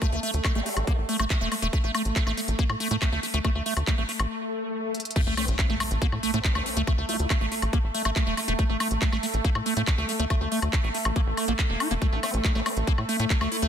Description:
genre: psychedelic trance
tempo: 140 BPM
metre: 4/4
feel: straight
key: A phrygian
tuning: A4 = 444 Hz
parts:
  - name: vowel-sweep wobble bass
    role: second line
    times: 0.0-1.0, 5.4-7.3, 12.2-12.7 s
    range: G3 to E4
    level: -40 LUFS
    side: left 2 dB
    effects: wide subtle chorus, sidechain pumping, high-pass filter, tape echo
  - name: evolving wavetable pad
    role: sustained chords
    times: 0.0-13.7 s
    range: A3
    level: -34 LUFS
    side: right 1 dB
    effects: chorus, built-in reverb, sidechain pumping
  - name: liquid acid bass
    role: riff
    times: 0.0-13.7 s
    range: A3 to E4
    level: -30 LUFS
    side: right 1 dB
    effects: phaser, auto-pan, sidechain pumping, dub echo
  - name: electronic kick drum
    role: drums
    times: 0.0-13.4 s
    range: none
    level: -24 LUFS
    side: equal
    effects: none
  - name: techno drum kit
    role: drums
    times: 0.0-13.7 s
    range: crash cymbal, handclaps, hi-hat, woodblock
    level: -30 LUFS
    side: left 2 dB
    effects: none
  - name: tight sequencer bass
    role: bass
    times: 0.1-13.7 s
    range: E1 to A2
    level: -28 LUFS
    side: equal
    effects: tube saturation
  - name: swell and impact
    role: sound effects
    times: 4.4-6.9 s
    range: none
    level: -33 LUFS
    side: left 1 dB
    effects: none
room: light reverb, digital ambience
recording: dense, heavily limited modern master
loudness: -23 LUFS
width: side -8 dB against mid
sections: 0.0-5.2 A section; 5.2-13.7 B section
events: break 4.3-5.2; swell 4.4-5.2; drum fill 4.9; drop 5.2-13.7; impact 5.2-6.9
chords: 0.0 A5

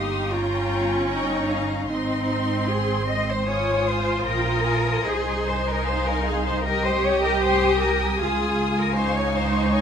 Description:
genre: classical, slow romantic movement for string orchestra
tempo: 76 BPM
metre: 4/4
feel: rubato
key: Ab major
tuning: A4 = 440 Hz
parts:
  - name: rich studio violin section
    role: melody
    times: 0.0-9.8 s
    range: C6 to Eb6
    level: -33 LUFS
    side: left 5 dB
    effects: none
  - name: rich studio violin section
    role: second line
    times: 0.0-9.8 s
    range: C5 to C6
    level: -30 LUFS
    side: left 2 dB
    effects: none
  - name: clear studio viola section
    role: accompaniment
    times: 0.0-9.8 s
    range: C4 to G4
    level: -26 LUFS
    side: right 1 dB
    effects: none
  - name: clear studio double bass section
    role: bass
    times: 0.0-9.8 s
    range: G1 to Db2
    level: -26 LUFS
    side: right 2 dB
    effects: none
  - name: rich studio cello section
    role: bass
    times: 0.0-9.8 s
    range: Eb4 to Eb5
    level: -25 LUFS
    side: left 2 dB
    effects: none
room: moderate recital hall reverb, RT60 1.7 s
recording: none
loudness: -20 LUFS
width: side -8 dB against mid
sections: 0.0-9.8 A section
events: none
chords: 0.0 Eb/G; 1.9 Ab; 5.1 Ab/C; 8.2 Db

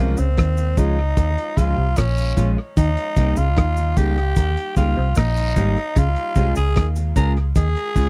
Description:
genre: roots reggae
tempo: 75 BPM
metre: 4/4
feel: straight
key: unclear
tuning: A4 = 438 Hz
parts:
  - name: growling tenor saxophone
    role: melody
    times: 0.0-8.1 s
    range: Bb3 to Bb4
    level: -27 LUFS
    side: equal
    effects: tape echo
  - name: clean electric guitar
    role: accompaniment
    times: 0.0-8.1 s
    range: F3 to Ab4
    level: -30 LUFS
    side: equal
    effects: subtle chorus, tape echo
  - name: muted clav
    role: riff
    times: 0.0-8.1 s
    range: Ab2 to Eb3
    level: -30 LUFS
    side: equal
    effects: phaser
  - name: vintage muted fingered electric bass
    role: bass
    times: 0.0-8.1 s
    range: Ab1 to Eb2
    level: -22 LUFS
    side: equal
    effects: tube saturation
  - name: cloth-damped thuddy drum kit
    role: drums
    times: 0.2-8.1 s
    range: hi-hat, kick drum, rim click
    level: -22 LUFS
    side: equal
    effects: none
  - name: cabasa and guiro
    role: percussion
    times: 0.2-8.1 s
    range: none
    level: -40 LUFS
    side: equal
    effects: none
room: little or no reverb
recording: dry, close 1970s-style studio recording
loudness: -19 LUFS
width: mono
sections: 0.0-8.1 A section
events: none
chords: 0.0 Db; 2.8 Eb; 6.0 Db

